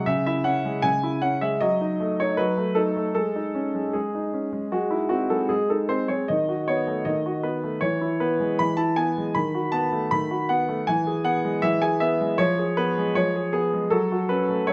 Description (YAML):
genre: classical-period piano sonatina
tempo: 78 BPM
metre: 4/4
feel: straight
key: E major from 6.3 s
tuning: A4 = 440 Hz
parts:
  - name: clear grand piano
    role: solo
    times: 0.0-14.7 s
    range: C#3 to B5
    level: -24 LUFS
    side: equal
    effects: none
room: moderate recital hall reverb, RT60 1.7 s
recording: close, detailed microphones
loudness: -24 LUFS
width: mono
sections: 0.0-14.7 A section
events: none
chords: 0.1 C#m; 1.6 D#dim/F#; 3.2 G#sus4; 4.7 G#; 6.3 B7/D#; 7.8 E; 9.4 B7/D#; 10.9 E; 12.4 Fdim; 13.9 F#m